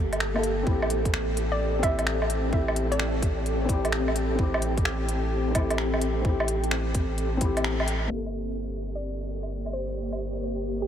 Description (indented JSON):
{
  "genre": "future garage",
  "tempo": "129 BPM",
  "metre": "4/4",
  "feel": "swing 66% on 16ths",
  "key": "unclear",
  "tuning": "A4 = 439 Hz",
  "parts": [
    { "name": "felt-muted upright piano", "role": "accompaniment", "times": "0.0-10.9 s", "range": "Bb3 to A4", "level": "-32 LUFS", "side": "left 4 dB", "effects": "sidechain pumping, ping-pong delay" },
    { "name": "ethereal airy pad", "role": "sustained chords", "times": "0.0-10.9 s", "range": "Bb3 to A4", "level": "-31 LUFS", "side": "equal", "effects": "ensemble chorus, built-in reverb, sidechain pumping" },
    { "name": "warm sub bass", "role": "bass", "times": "0.0-10.9 s", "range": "G1 to A1", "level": "-30 LUFS", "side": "equal", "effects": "sidechain pumping" },
    { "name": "organic electronic drum kit", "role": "drums", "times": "0.1-10.2 s", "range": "finger snaps, hi-hat, woodblock", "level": "-31 LUFS", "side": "right 1 dB", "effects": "none" },
    { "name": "electronic kick drum", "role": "drums", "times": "0.7-7.5 s", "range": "none", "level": "-25 LUFS", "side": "equal", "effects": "none" },
    { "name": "hollow square pluck", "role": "melody", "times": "1.5-3.5, 9.0-10.9 s", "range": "G4 to E5", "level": "-34 LUFS", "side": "equal", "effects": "chorus, vintage 12-bit sampler grit, tape echo" }
  ],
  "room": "moderate huge ambient reverb, RT60 8.4 s",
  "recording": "dreamy mix soaked in reverb, low-pass filter",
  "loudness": "-24 LUFS",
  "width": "side -9 dB against mid",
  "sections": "0.0-8.1 A section; 8.1-10.9 B section",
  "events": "band accent 7.6; filter sweep 8.1-10.9",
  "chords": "0.0 Gmadd9; 0.7 Am7; 8.1 Gmadd9"
}